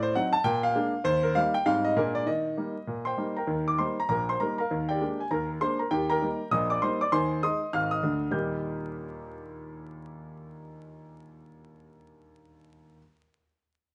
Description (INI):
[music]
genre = jazz, stride piano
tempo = 198 BPM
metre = 4/4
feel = swing 62% on 8ths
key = Eb major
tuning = A4 = 442 Hz
[part]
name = clear grand piano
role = solo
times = 0.0-13.0 s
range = Ab1 to G6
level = -28 LUFS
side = equal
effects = none
[sound]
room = little or no reverb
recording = recorded outdoors, with no room sound, vinyl crackle, nothing above 10.9 kHz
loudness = -28 LUFS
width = mono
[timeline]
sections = 0.0-3.5 A section; 3.5-8.3 B section; 8.3-10.8 C section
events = none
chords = 0.4 Bb7; 1.1 Eb; 1.7 Abmaj7; 2.0 Bb7; 2.3 Eb; 4.7 Bb7/Eb; 5.9 Eb; 7.1 Ab/Eb; 8.3 Eb